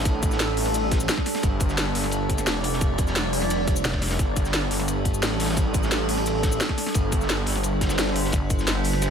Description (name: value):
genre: dark technical drum and bass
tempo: 174 BPM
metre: 4/4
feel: straight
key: unclear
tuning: A4 = 436 Hz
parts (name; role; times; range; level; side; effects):
- metallic inharmonic drone; sustained chords; 0.0-9.1 s; G3 to D5; -27 LUFS; right 1 dB; chorus, built-in reverb, sidechain pumping
- wide detuned saw bass; bass; 0.0-8.3 s; F1 to A1; -26 LUFS; equal; chorus, overdrive
- crunchy breakbeat drum kit; drums; 0.0-9.1 s; hi-hat, ride cymbal, snare drum; -34 LUFS; equal; high-pass filter on cymbals, studio reverb, high-pass filter on hats, high-pass filter on snare, high-pass filter on room
- drum and bass drum kit; drums; 0.1-9.1 s; cabasa, hi-hat, snare drum; -27 LUFS; left 1 dB; studio reverb
- electronic kick drum; drums; 0.1-8.6 s; none; -24 LUFS; equal; studio reverb
- pulsing pluck wobble bass; bass; 3.8-4.2, 8.3-9.1 s; F1 to G1; -25 LUFS; equal; chorus
room: light reverb, digital ambience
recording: none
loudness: -21 LUFS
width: side -7 dB against mid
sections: 0.0-9.1 A section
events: none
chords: 0.0 G5